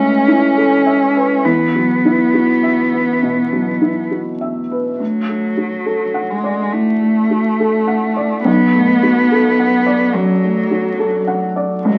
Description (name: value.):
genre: neoclassical piano and strings.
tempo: 69 BPM.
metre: 4/4.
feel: rubato.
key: unclear.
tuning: A4 = 440 Hz.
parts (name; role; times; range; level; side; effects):
rich cello; second line; 0.0-12.0 s; F#3 to C#4; -18 LUFS; equal; none.
felt-muted upright piano; accompaniment; 0.0-12.0 s; B1 to F#5; -19 LUFS; equal; none.
room: wet studio reverb, RT60 0.9 s.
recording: very old 78 rpm record, vinyl crackle.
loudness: -15 LUFS.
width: mono.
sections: 0.0-12.0 A section.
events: none.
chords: 0.0 Aadd9/C#; 1.5 Esus2; 5.0 D; 8.5 Bm7.